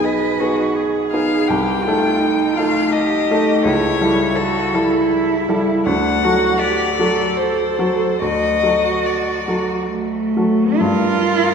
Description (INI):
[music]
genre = classical, slow romantic movement for piano trio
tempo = 63-84 BPM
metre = 3/4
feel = rubato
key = unclear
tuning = A4 = 439 Hz
[part]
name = rich violin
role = melody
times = 0.0-11.5 s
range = A4 to G5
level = -21 LUFS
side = left 6 dB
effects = none
[part]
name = warm cello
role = second line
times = 0.0-11.5 s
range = A3 to Cb5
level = -20 LUFS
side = right 4 dB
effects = none
[part]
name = clear baby grand piano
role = accompaniment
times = 0.0-11.5 s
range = Cb2 to A4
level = -18 LUFS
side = equal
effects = none
[sound]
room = wet church reverb, RT60 3.2 s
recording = recorded in a church or concert hall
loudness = -15 LUFS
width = side -6 dB against mid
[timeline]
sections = 0.0-10.8 A section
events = none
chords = 0.0 Abm/Cb; 1.5 Am7b5/C; 3.7 A7/C#; 5.9 D; 10.8 Gm